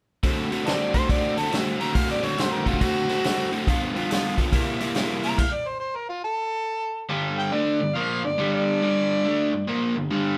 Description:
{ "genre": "blues rock power trio and southern rock", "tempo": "140 BPM", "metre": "4/4", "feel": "swing 65% on 8ths", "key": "unclear", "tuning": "A4 = 445 Hz", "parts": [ { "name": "overdriven electric guitar", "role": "riff", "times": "0.2-10.4 s", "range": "G2 to F#4", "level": "-26 LUFS", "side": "equal", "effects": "none" }, { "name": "vintage drum kit", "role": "drums", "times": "0.2-5.5 s", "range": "crash cymbal, hi-hat, kick drum, snare drum", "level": "-28 LUFS", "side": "equal", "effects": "none" }, { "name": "overdriven harmonica", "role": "melody", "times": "0.7-9.8 s", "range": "F4 to Bb5", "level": "-29 LUFS", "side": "equal", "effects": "none" } ], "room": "light reverb", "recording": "band playing live in one room", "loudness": "-24 LUFS", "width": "mono", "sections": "0.2-7.1 A section; 7.1-10.4 B section", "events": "stop 5.4-7.1", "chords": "0.2 D7; 3.7 G7; 4.5 C7; 5.4 N.C.; 7.1 G5", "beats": "| 0.24 0.67 1.10 1.53 | 1.96 2.39 2.82 3.25 | 3.67 4.10 4.53 4.96 | 5.39 5.82 6.25 6.67 | 7.10 7.53 7.96 8.39 | 8.82 9.25 9.68 10.11" }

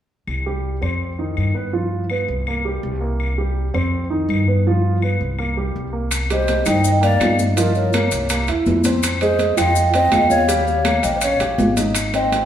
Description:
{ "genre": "Afro-Cuban jazz", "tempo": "164 BPM", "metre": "4/4", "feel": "straight", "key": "C minor", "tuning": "A4 = 441 Hz", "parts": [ { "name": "upright bass", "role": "bass", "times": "0.3-12.4 s", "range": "Ab1 to G2", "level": "-21 LUFS", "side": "equal", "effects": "none" }, { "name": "claves", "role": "percussion", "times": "0.3-12.1 s", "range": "none", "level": "-29 LUFS", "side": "left 5 dB", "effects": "none" }, { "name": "warm grand piano", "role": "accompaniment", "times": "0.5-12.4 s", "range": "Eb3 to G5", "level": "-23 LUFS", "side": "right 3 dB", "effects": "none" }, { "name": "congas", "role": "percussion", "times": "6.1-12.5 s", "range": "none", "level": "-24 LUFS", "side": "left 2 dB", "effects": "none" }, { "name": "maracas", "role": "percussion", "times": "6.1-12.5 s", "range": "none", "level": "-29 LUFS", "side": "left 6 dB", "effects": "none" }, { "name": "timbales", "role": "percussion", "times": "6.1-12.5 s", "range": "none", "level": "-26 LUFS", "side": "right 4 dB", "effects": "none" }, { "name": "vibraphone with medium mallets", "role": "melody", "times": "6.3-12.5 s", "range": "Db5 to G5", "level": "-20 LUFS", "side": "right 2 dB", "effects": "none" }, { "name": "breathy mellow concert flute", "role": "second line", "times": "6.3-12.5 s", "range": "Bb4 to Eb5", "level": "-23 LUFS", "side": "left 5 dB", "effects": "none" } ], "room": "wet large studio reverb, RT60 1.4 s", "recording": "band playing live in one room", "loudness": "-16 LUFS", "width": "side -10 dB against mid", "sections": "0.3-6.1 A section; 6.1-12.5 B section", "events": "none", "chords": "0.3 C5; 1.0 F5; 1.7 G7; 2.5 C5; 3.9 F5; 4.7 G7; 5.4 C5; 6.1 Cm9; 7.6 Gm7b5; 8.3 C7; 9.0 Fm9; 10.5 Eb9", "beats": "| 0.28 0.64 1.01 1.37 | 1.74 2.10 2.47 2.83 | 3.20 3.56 3.93 4.29 | 4.66 5.02 5.39 5.75 | 6.12 6.48 6.84 7.21 | 7.58 7.94 8.30 8.67 | 9.04 9.40 9.77 10.13 | 10.50 10.86 11.23 11.59 | 11.96 12.32" }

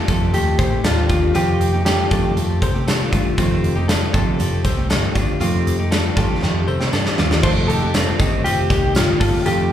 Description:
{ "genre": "jangly indie pop", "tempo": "118 BPM", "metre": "4/4", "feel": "straight", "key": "F mixolydian", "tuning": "A4 = 441 Hz", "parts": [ { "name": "mellow electric guitar", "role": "melody", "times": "0.0-2.3, 7.4-9.7 s", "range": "F4 to C5", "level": "-22 LUFS", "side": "left 1 dB", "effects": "slapback echo, digital delay" }, { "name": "picked steel-string acoustic guitar", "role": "accompaniment", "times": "0.0-9.7 s", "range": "F2 to G4", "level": "-23 LUFS", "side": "right 3 dB", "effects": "slapback echo" }, { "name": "direct-recorded clean electric guitar", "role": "arpeggios", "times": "0.0-9.7 s", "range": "C4 to C5", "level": "-25 LUFS", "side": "left 7 dB", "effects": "lush chorus, slapback echo, digital delay" }, { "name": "vintage muted picked electric bass", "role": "bass", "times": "0.1-9.7 s", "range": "F1 to C3", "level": "-21 LUFS", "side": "equal", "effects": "none" }, { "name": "big rock drum kit", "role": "drums", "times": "0.1-9.6 s", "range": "crash cymbal, hi-hat, kick drum, snare drum", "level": "-20 LUFS", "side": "equal", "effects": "none" }, { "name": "tambourine", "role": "percussion", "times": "0.1-9.6 s", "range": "none", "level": "-39 LUFS", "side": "right 3 dB", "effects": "none" } ], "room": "light reverb", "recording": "live gig heard through the venue's PA, club reverb", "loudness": "-15 LUFS", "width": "side -10 dB against mid", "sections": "0.0-7.4 A section; 7.4-9.7 B section", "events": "drum fill 6.4-7.4", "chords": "0.0 F9", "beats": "0.34 0.84 | 1.35 1.86 2.36 2.87 | 3.38 3.88 4.39 4.90 | 5.41 5.91 6.42 6.93 | 7.43 7.94 8.45 8.95 | 9.46" }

